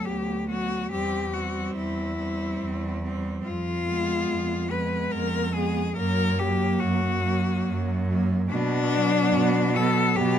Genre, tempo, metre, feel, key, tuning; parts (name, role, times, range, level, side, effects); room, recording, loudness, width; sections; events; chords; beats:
classical, lyrical piece for cello ensemble; 71 BPM; 3/4; rubato; A4 = 440 Hz
rich cello; melody; 0.0-10.4 s; D4 to Cb5; -27 LUFS; left 5 dB
clear cello; second line; 0.0-10.4 s; A#3 to C4; -32 LUFS; right 11 dB
rich cello; accompaniment; 0.0-10.4 s; F#3 to Ab3; -30 LUFS; left 1 dB
rich cello; bass; 0.1-10.4 s; D2 to B2; -28 LUFS; right 2 dB
little or no reverb; close, detailed microphones; -23 LUFS; side -9 dB against mid
0.0-10.4 A section
0.0 Bm/D; 0.9 C/E; 3.5 Fdim; 6.0 F#; 8.5 Bm
0.05 | 0.91 1.75 2.62 | 3.46 4.30 5.13 | 5.97 6.81 7.66 | 8.51 9.34 10.17